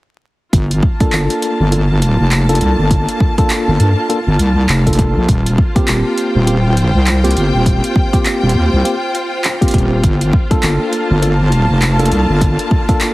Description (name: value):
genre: glitch hop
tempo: 101 BPM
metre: 4/4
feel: swing 60% on 16ths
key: G minor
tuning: A4 = 440 Hz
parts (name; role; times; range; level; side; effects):
- wobble bass; bass; 0.5-12.6 s; Eb1 to G2; -13 LUFS; equal; chorus
- electronic kick drum; drums; 0.5-13.0 s; none; -13 LUFS; equal; overdrive
- pop drum kit; drums; 0.5-13.1 s; handclaps, hi-hat; -20 LUFS; equal; overdrive
- rich studio string section; texture; 0.5-13.1 s; Bb3 to A5; -21 LUFS; left 1 dB; sidechain pumping
- tine electric piano; stabs; 1.0-13.1 s; Bb3 to A4; -19 LUFS; equal; fast stereo tremolo, sidechain pumping, low-pass filter, digital delay
room: light reverb, digital ambience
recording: heavily compressed radio sound, multiband compression, vinyl crackle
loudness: -11 LUFS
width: side -18 dB against mid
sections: 0.5-13.1 A section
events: filter sweep on tine electric piano 0.5-13.1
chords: 0.5 Gm9; 5.3 Eb69; 10.0 Gm9